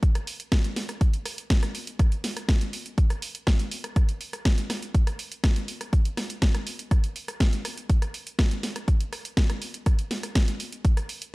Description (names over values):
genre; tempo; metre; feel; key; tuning
techno; 122 BPM; 4/4; straight; none; none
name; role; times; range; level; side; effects
electronic kick drum; drums; 0.0-10.9 s; none; -21 LUFS; equal; none
house drum kit; drums; 0.0-11.3 s; hi-hat, rim click, snare drum; -30 LUFS; equal; none
room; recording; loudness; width
little or no reverb; dry, gritty hardware recording; -23 LUFS; side -23 dB against mid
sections
0.0-11.3 A section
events
none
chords
none